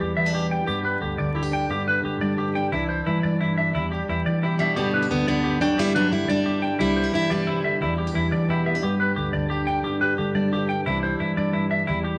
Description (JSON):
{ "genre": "highlife", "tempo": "118 BPM (dotted quarters)", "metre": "12/8", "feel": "straight", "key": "G major", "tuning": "A4 = 443 Hz", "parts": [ { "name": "fingerpicked plugged-in swing-style acoustic guitar", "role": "accompaniment", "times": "0.0-12.2 s", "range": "E2 to G4", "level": "-28 LUFS", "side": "equal", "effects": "none" }, { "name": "clean electric guitar", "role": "arpeggios", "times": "0.0-12.2 s", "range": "E4 to G5", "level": "-29 LUFS", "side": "equal", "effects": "none" }, { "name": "vintage muted fingered electric bass", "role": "bass", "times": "0.0-12.1 s", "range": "C2 to G3", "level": "-30 LUFS", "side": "equal", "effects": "none" }, { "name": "picked plugged-in steel-string acoustic guitar", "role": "melody", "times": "4.6-7.9 s", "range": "B2 to E4", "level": "-25 LUFS", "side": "equal", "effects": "none" } ], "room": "wet studio reverb, RT60 0.6 s", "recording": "vinyl crackle, lossy compression artefacts", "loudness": "-23 LUFS", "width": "mono", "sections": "0.0-12.2 A section", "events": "none", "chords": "0.0 Em7; 0.7 G; 2.7 Cadd9; 3.7 Em7; 4.8 G; 6.8 Cadd9; 7.8 Em7; 8.8 G; 10.9 Cadd9" }